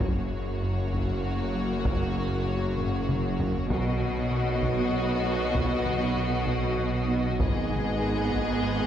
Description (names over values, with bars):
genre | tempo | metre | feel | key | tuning
cinematic, hybrid orchestral and electronic film score | 65 BPM (dotted quarters) | 6/8 | straight | unclear | A4 = 440 Hz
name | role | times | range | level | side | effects
warm symphonic violin section | melody | 0.0-8.9 s | Db5 to D#5 | -36 LUFS | left 5 dB | none
rich symphonic violin section | second line | 0.0-8.9 s | Gb4 to Ab4 | -35 LUFS | left 3 dB | none
warm symphonic viola section | accompaniment | 0.0-8.9 s | Bb3 to B3 | -35 LUFS | right 2 dB | none
clear trombone section | sustained chords | 0.0-8.9 s | Db3 to Ab3 | -39 LUFS | right 2 dB | none
glassy FM pad | sustained chords | 0.0-8.9 s | Eb3 to B4 | -39 LUFS | left 1 dB | none
warm French horn section | sustained chords | 0.0-8.9 s | Bb3 to Gb4 | -37 LUFS | left 2 dB | none
round analog bass | riff | 0.0-8.8 s | Gb2 to B3 | -35 LUFS | right 1 dB | none
clear symphonic double bass section | bass | 0.0-8.9 s | Gb1 to B1 | -35 LUFS | right 3 dB | none
mellow tuba | bass | 0.0-8.9 s | Gb1 to B1 | -34 LUFS | right 2 dB | none
rich symphonic cello section | bass | 0.0-8.9 s | Gb2 to B2 | -33 LUFS | right 1 dB | none
sub bass with octave | bass | 0.0-8.9 s | Gb1 to B1 | -36 LUFS | left 1 dB | none
taiko ensemble | drums | 0.0-8.9 s | none | -32 LUFS | equal | none
room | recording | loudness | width
wet scoring stage reverb, RT60 2.0 s | heard from further back in the room | -25 LUFS | side -10 dB against mid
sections
0.0-8.9 A section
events
drum fill 2.8-3.7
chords
0.0 Gb; 3.7 B; 7.4 Abm